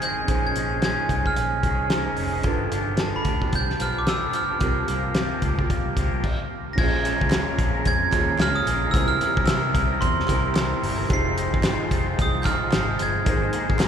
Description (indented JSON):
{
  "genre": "indie pop, bedroom pop",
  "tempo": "111 BPM",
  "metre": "4/4",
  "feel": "swing 60% on 16ths",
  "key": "unclear",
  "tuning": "A4 = 440 Hz",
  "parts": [
    { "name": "glockenspiel with hard plastic mallets", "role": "melody", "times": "0.0-13.8 s", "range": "A5 to C7", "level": "-26 LUFS", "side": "right 3 dB", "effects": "none" },
    { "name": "electric guitar through a small old amp", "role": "accompaniment", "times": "0.0-13.9 s", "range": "G2 to C5", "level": "-28 LUFS", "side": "left 2 dB", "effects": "warbly pitch drift" },
    { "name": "mellow tine electric piano", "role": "accompaniment", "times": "0.0-13.9 s", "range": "C4 to Bb5", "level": "-32 LUFS", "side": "right 4 dB", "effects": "medium stereo tremolo" },
    { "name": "cloth-damped thuddy drum kit", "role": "drums", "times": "0.0-13.9 s", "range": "crash cymbal, hi-hat, kick drum, snare drum", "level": "-25 LUFS", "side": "equal", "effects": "none" },
    { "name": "vintage muted fingered electric bass", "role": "bass", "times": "0.3-13.9 s", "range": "F1 to C3", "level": "-28 LUFS", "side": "equal", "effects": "none" },
    { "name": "pipe organ, foundations", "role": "sustained chords", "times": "6.8-13.9 s", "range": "C3 to G5", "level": "-36 LUFS", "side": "left 1 dB", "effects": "none" },
    { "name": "group handclap", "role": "percussion", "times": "7.3-13.9 s", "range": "none", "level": "-37 LUFS", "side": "right 2 dB", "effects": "none" }
  ],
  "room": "wet cathedral reverb, RT60 5.7 s",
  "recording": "band playing live in one room",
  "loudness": "-20 LUFS",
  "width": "side -8 dB against mid",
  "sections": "0.0-6.8 A section; 6.8-13.9 B section",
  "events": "tine electric piano fill 1.6-2.5; stop 6.2-6.8",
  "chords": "0.3 Bbm11; 2.5 G7; 4.6 C7sus4; 6.8 Bbm7; 8.9 C7; 11.1 Fm7; 13.3 Abadd9"
}